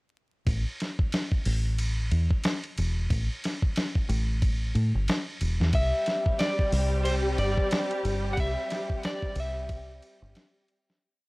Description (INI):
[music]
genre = trip hop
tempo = 91 BPM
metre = 4/4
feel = swing 58% on 16ths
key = A minor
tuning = A4 = 440 Hz
[part]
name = deep dub fingered electric bass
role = bass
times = 0.5-10.3 s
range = E1 to A2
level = -26 LUFS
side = equal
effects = none
[part]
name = dusty soul sampler-style drum kit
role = drums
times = 0.5-11.0 s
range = hi-hat, kick drum, ride cymbal, snare drum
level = -29 LUFS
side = equal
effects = small room ambience
[part]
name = electric slide guitar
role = melody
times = 5.7-10.7 s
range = C5 to F#5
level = -30 LUFS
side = equal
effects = none
[part]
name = dark studio string section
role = sustained chords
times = 5.7-11.0 s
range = G3 to G4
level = -33 LUFS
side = equal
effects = none
[part]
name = wind-like tuned noise texture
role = texture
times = 6.2-11.0 s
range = C4 to C5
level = -42 LUFS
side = left 1 dB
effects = built-in reverb
[sound]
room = little or no reverb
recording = dry, gritty hardware recording, vinyl crackle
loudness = -25 LUFS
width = side -24 dB against mid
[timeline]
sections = 0.5-11.0 groove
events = fade-out 7.5-11.0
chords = 0.5 A5; 5.7 Cadd9